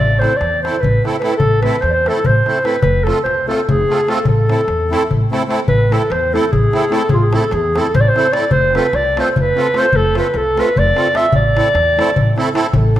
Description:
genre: balkan folk, Balkan wedding band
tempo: 296 BPM (eighths)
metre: 7/8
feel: straight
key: A harmonic minor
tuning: A4 = 438 Hz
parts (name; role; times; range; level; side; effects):
- mellow clarinet; melody; 0.0-13.0 s; F4 to E5; -15 LUFS; equal; slapback echo
- upright bass; bass; 0.0-13.0 s; F1 to E2; -18 LUFS; equal; none
- musette accordion; accompaniment; 0.2-13.0 s; A3 to A4; -20 LUFS; right 2 dB; none
- darbuka; percussion; 0.2-13.0 s; none; -20 LUFS; left 2 dB; none
room: moderate recital hall reverb, RT60 1.8 s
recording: none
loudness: -12 LUFS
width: side -12 dB against mid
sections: 0.0-5.7 A section; 5.7-13.0 A section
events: none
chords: 0.0 Am; 2.8 F; 4.2 Am; 8.5 F; 11.3 Am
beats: 0.18 0.39 0.59 0.79 1.00 1.20 | 1.40 1.61 1.81 2.01 2.22 2.42 2.62 | 2.83 3.03 3.23 3.44 3.64 3.84 4.05 | 4.25 4.45 4.66 4.86 5.06 5.26 5.47 | 5.67 5.87 6.08 6.28 6.48 6.68 6.89 | 7.09 7.29 7.49 7.70 7.90 8.10 8.30 | 8.50 8.71 8.91 9.11 9.31 9.51 9.72 | 9.92 10.12 10.32 10.52 10.72 10.93 11.13 | 11.33 11.53 11.73 11.93 12.13 12.34 12.54 | 12.74 12.94

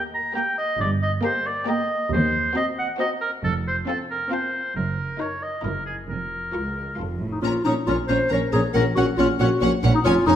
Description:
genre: cinematic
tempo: 137 BPM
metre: 3/4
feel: straight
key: Bb minor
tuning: A4 = 440 Hz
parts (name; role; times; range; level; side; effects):
- rich studio violin section; melody; 0.0-10.4 s; Gb5 to Db6; -33 LUFS; left 2 dB; none
- clear oboe; second line; 0.0-7.0 s; Ab4 to Bb5; -25 LUFS; right 1 dB; none
- warm studio violin section; second line; 0.0-10.3 s; F4 to Db5; -32 LUFS; left 1 dB; none
- rich studio viola section; accompaniment; 0.0-10.4 s; Bb3 to F4; -28 LUFS; equal; none
- clear studio double bass section; bass; 0.8-10.4 s; F1 to Eb2; -27 LUFS; right 2 dB; none
- rich studio cello section; bass; 0.8-10.4 s; Db2 to Bb2; -27 LUFS; right 1 dB; none
- small celesta; melody; 7.3-10.4 s; Eb6 to C7; -31 LUFS; left 8 dB; none
- mellow clarinet; second line; 7.3-10.4 s; Eb4 to C5; -22 LUFS; left 2 dB; none
- dark tuba; bass; 7.4-10.4 s; F1 to Bb1; -29 LUFS; right 3 dB; none
room: wet recital hall reverb, RT60 1.6 s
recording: none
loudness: -21 LUFS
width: side -10 dB against mid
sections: 0.0-7.4 A section; 7.4-10.4 B section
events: none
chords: 0.0 Eb; 0.8 Eb/G; 2.1 Cm7b5/Eb; 3.4 F; 4.8 Ebm/Gb; 5.6 Gb7; 6.1 Bbm/F; 7.0 F; 7.4 Bbm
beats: 0.36 | 0.80 1.24 1.68 | 2.12 2.56 2.99 | 3.43 3.87 4.31 | 4.75 5.20 5.64 | 6.09 6.53 6.98 | 7.43 7.88 8.31 | 8.75 9.19 9.62 | 10.06

